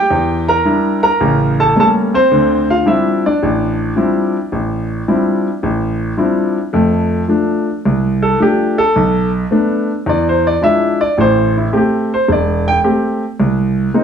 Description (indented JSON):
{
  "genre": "solo jazz",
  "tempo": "108 BPM",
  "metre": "4/4",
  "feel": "swing 67% on 8ths",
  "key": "D minor, F major from 6.7 s",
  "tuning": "A4 = 441 Hz",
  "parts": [
    { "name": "clear grand piano", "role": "solo", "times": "0.0-14.0 s", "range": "E1 to Bb5", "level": "-12 LUFS", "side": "equal", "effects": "none" }
  ],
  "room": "wet club reverb, RT60 0.7 s",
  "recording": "heard from further back in the room",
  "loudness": "-12 LUFS",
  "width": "side -7 dB against mid",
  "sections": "0.0-6.7 A section; 6.7-14.0 B section",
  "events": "grand piano solo 6.7-14.0",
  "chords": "0.1 Em7b5; 1.2 A7b9; 2.3 Dm11; 6.7 F6; 8.9 Bm7; 10.1 E7b9; 11.2 Am7; 13.4 Cm7"
}